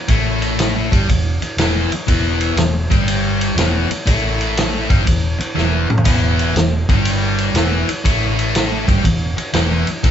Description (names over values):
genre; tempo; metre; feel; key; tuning
blues rock power trio and southern rock; 121 BPM; 4/4; swing 67% on 8ths; E minor; A4 = 440 Hz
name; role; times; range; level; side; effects
overdriven electric guitar; riff; 0.1-10.1 s; E2 to A3; -19 LUFS; left 2 dB; none
vintage muted fingered electric bass; bass; 0.1-10.1 s; E1 to A1; -20 LUFS; equal; none
vintage drum kit; drums; 0.1-10.1 s; kick drum, ride cymbal, snare drum, splash cymbal, toms; -18 LUFS; equal; none
room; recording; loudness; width
light reverb; band playing live in one room, nothing above 7.8 kHz; -14 LUFS; side -9 dB against mid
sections
0.0-10.1 A section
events
drum fill 5.6-6.1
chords
0.0 Em